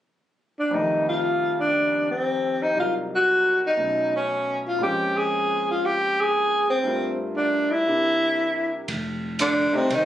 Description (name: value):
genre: jazz, small-group swing and bop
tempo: 118 BPM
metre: 4/4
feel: swing 67% on 8ths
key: F mixolydian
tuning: A4 = 440 Hz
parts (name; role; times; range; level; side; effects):
- breathy tenor saxophone; melody; 0.6-10.1 s; C4 to Ab4; -21 LUFS; equal; none
- clear upright piano; accompaniment; 0.7-9.9 s; C2 to F4; -30 LUFS; left 1 dB; none
- upright bass; bass; 8.9-10.1 s; F1 to C2; -31 LUFS; equal; none
- open jazz drum kit; drums; 8.9-10.1 s; hi-hat, kick drum, ride cymbal; -31 LUFS; right 2 dB; none
- bright baritone saxophone; second line; 9.4-10.1 s; C3 to Eb3; -27 LUFS; right 2 dB; none
room: moderate studio reverb, RT60 0.9 s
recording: recorded on a phone in the room, club reverb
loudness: -20 LUFS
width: side -12 dB against mid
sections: 0.7-8.9 A section; 8.9-10.1 B section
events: none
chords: 0.0 N.C.; 0.7 F9; 2.8 Cm7b5; 3.8 B9; 4.8 Bbm7; 6.8 Gm7; 7.9 C7; 8.9 F7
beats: 0.21 | 0.72 1.23 1.74 2.25 | 2.76 3.27 3.78 4.29 | 4.80 5.31 5.82 6.33 | 6.84 7.35 7.86 8.37 | 8.88 9.39 9.90